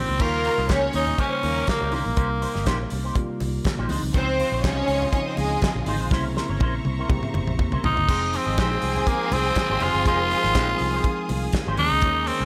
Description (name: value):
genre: disco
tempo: 122 BPM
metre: 4/4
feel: straight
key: F minor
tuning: A4 = 440 Hz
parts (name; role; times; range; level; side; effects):
- raspy tenor saxophone; melody; 0.0-2.9, 7.9-12.5 s; Bb3 to F4; -27 LUFS; equal; tape echo
- electric guitar with an envelope filter; accompaniment; 0.0-12.5 s; Ab3 to Eb5; -36 LUFS; equal; ensemble chorus
- mellow tine electric piano; accompaniment; 0.0-12.5 s; C3 to C5; -34 LUFS; equal; none
- vintage muted fingered electric bass; bass; 0.0-12.5 s; F1 to Eb2; -30 LUFS; equal; none
- congas; percussion; 0.1-12.4 s; none; -38 LUFS; equal; none
- rich studio violin section; second line; 0.2-11.7 s; Ab3 to Db5; -29 LUFS; equal; none
- damped 70s drum kit; drums; 0.2-12.4 s; crash cymbal, handclaps, hi-hat, kick drum, snare drum, toms; -29 LUFS; equal; gated reverb
- clear studio string section; sustained chords; 4.1-12.5 s; Ab4 to Eb6; -37 LUFS; equal; none
room: light reverb, small room ambience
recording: none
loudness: -23 LUFS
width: mono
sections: 0.2-8.1 A section; 8.1-12.5 B section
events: drum fill 6.1-8.1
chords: 0.2 Eb7; 1.9 Cm7; 3.9 Dbmaj9; 6.1 C7b9; 8.1 Fm9; 11.8 Eb7sus4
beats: | 0.20 0.70 1.19 1.68 | 2.17 2.66 3.16 3.65 | 4.14 4.63 5.13 5.62 | 6.12 6.61 7.10 7.59 | 8.09 8.58 9.07 9.57 | 10.06 10.55 11.04 11.54 | 12.03